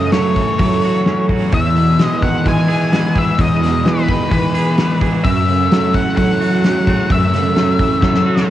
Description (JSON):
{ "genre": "rock, shoegaze and dream pop", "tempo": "129 BPM", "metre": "4/4", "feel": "straight", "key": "unclear", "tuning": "A4 = 441 Hz", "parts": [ { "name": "octave-fuzz lead guitar", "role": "melody", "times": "0.0-8.5 s", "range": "B4 to G#5", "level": "-20 LUFS", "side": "left 3 dB", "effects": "distortion, cassette tape, plate reverb, tape echo" }, { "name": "picked twelve-string acoustic guitar", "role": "arpeggios", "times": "0.0-8.5 s", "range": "F#4 to C#5", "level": "-25 LUFS", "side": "right 6 dB", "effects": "lush chorus, cassette tape, plate reverb, tape echo" }, { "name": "thick fuzz guitar", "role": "riff", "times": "0.0-8.5 s", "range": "E2 to G#4", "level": "-21 LUFS", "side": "left 6 dB", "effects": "distortion, analog chorus, cassette tape" }, { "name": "twangy electric guitar", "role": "riff", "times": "0.0-8.5 s", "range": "E2 to G#4", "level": "-21 LUFS", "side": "right 7 dB", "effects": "reverse reverb, cassette tape" }, { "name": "fuzz fingered electric bass", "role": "bass", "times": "0.0-8.5 s", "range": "E2 to F#3", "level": "-18 LUFS", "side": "equal", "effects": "overdrive" }, { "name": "loose indie drum kit", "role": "drums", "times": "0.1-8.5 s", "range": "hi-hat, kick drum, snare drum", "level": "-19 LUFS", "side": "equal", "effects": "cassette tape" } ], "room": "light reverb", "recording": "home recording on cassette", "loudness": "-12 LUFS", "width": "side -12 dB against mid", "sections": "0.0-8.5 A section", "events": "drum fill 8.0-8.5", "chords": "0.0 F#m7; 1.5 Emaj7; 5.2 F#m7", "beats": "0.13 0.59 1.06 | 1.52 1.99 2.45 2.92 | 3.38 3.85 4.31 4.78 | 5.24 5.71 6.17 6.64 | 7.10 7.56 8.03 8.49" }